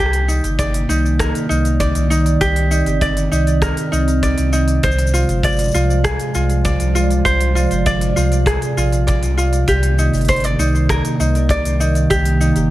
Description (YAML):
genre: folktronica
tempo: 99 BPM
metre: 4/4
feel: straight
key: C minor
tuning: A4 = 442 Hz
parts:
  - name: warbly tape-like pad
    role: sustained chords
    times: 0.4-12.7 s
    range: C3 to D5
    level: -20 LUFS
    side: right 2 dB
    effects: chorus, built-in reverb
  - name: ukulele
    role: arpeggios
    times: 0.0-12.7 s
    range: Eb4 to D5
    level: -20 LUFS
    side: equal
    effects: tape echo, plate reverb
  - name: warm sub bass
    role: bass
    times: 0.0-12.7 s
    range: G1 to C2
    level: -18 LUFS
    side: equal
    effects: none
  - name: organic electronic drum kit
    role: drums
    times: 0.1-12.7 s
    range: hi-hat, rim click, shaker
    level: -27 LUFS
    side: left 1 dB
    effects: overdrive
  - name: kick drum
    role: drums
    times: 0.6-12.2 s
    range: none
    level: -22 LUFS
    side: equal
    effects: none
room: light reverb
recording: vinyl crackle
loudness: -14 LUFS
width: side -15 dB against mid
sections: 0.0-12.7 A section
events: none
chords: 0.0 Cm9; 4.8 Dm7b5; 9.7 Cm9